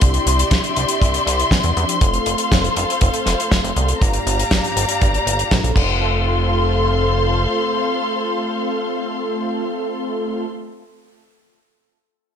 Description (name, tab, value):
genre	italo disco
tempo	120 BPM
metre	4/4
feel	straight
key	F major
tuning	A4 = 439 Hz
part	dark studio string section	sustained chords	0.0-10.5 s	G4 to C6	-21 LUFS	left 2 dB	none
part	mellow synth brass	stabs	0.0-10.5 s	G2 to A4	-25 LUFS	equal	chorus, ping-pong delay
part	chorused synth bass	bass	0.0-7.5 s	F1 to E2	-21 LUFS	right 1 dB	none
part	damped 70s drum kit	drums	0.0-5.9 s	crash cymbal, hi-hat, snare drum	-22 LUFS	left 2 dB	gated reverb
part	kick drum	drums	0.0-5.9 s	none	-17 LUFS	equal	none
room	moderate plate reverb, RT60 1.2 s, studio ambience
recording	bright 1980s-style digital production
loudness	-16 LUFS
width	side -8 dB against mid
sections	0.0-6.0 A section; 6.0-10.0 B section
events	none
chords	0.0 Cadd9; 2.0 F; 4.0 Gm7; 5.8 F